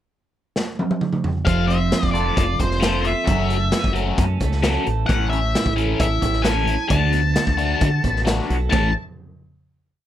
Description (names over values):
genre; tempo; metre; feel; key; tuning
indie rock; 132 BPM; 4/4; straight; A major; A4 = 440 Hz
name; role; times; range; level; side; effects
raw garage drum kit; drums; 0.6-8.8 s; crash cymbal, hi-hat, kick drum, snare drum, toms; -23 LUFS; equal; none
octave-fuzz lead guitar; melody; 1.5-8.9 s; C5 to A5; -24 LUFS; left 4 dB; distortion, slapback echo
biting overdriven guitar; riff; 1.5-8.9 s; E3 to F#4; -24 LUFS; left 7 dB; phaser
twelve-string electric guitar; riff; 1.5-8.9 s; F#2 to A4; -25 LUFS; right 7 dB; lush chorus, slapback echo
deep dub fingered electric bass; bass; 1.5-8.9 s; F1 to D3; -23 LUFS; equal; none
room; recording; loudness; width
little or no reverb; none; -18 LUFS; side -11 dB against mid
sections
0.0-1.5 pickup bar; 1.5-8.7 verse; 8.7-10.1 final chord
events
drum fill 0.6-1.5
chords
0.0 N.C.; 1.5 F; 3.3 F#m7; 4.9 A; 6.9 D6; 8.7 A